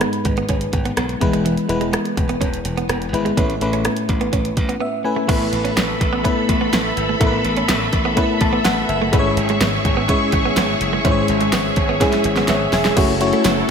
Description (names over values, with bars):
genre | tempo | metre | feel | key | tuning
1980s-style pop | 125 BPM | 4/4 | straight | unclear | A4 = 439 Hz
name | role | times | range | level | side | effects
FM electric piano | accompaniment | 0.0-13.7 s | G#2 to A5 | -20 LUFS | left 2 dB | chorus
direct-recorded clean electric guitar | riff | 0.0-13.5 s | E3 to C#4 | -25 LUFS | right 6 dB | wide subtle chorus, digital delay
glassy slap bass | bass | 0.0-13.6 s | E1 to B1 | -25 LUFS | equal | none
pop drum kit | drums | 0.0-13.6 s | crash cymbal, hi-hat, kick drum, rim click, snare drum, tambourine | -21 LUFS | equal | none
string machine, violas | sustained chords | 5.3-13.7 s | F#3 to C#6 | -22 LUFS | equal | ensemble chorus
cowbell | percussion | 5.3-13.6 s | none | -35 LUFS | right 5 dB | none
room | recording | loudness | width
wet lush hall reverb, RT60 2.4 s | bright 1980s-style digital production | -16 LUFS | side -6 dB against mid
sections
0.0-5.3 A section; 5.3-13.0 B section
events
FM electric piano fill 4.6-5.3, 8.2-9.1; drum fill 12.0-13.0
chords
0.0 G#m; 1.2 E; 3.4 Aadd9; 5.3 Asus2; 9.1 C#m; 13.0 F#m7